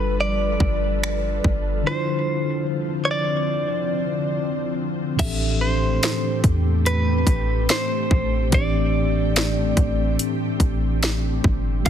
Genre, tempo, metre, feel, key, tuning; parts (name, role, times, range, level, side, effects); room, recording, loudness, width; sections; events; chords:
contemporary R&B; 72 BPM; 4/4; swing 54% on 16ths; A minor; A4 = 440 Hz
direct-recorded clean electric guitar; melody; 0.0-11.9 s; B4 to F5; -26 LUFS; equal; ping-pong delay
mellow tine electric piano; accompaniment; 0.0-11.9 s; A2 to D5; -26 LUFS; equal; medium stereo tremolo
ethereal airy pad; sustained chords; 0.0-11.9 s; D3 to B4; -28 LUFS; left 1 dB; ensemble chorus, built-in reverb
clean 808-style bass; bass; 0.0-11.9 s; G1 to E2; -23 LUFS; equal
trap drum kit; drums; 0.6-11.9 s; crash cymbal, finger snaps, hi-hat, kick drum, snare drum; -22 LUFS; equal; overdrive
little or no reverb; dense, heavily limited modern master; -19 LUFS; side -9 dB against mid
0.0-5.2 A section; 5.2-11.9 B section
0.0 G9; 1.9 Dm7; 5.2 Am11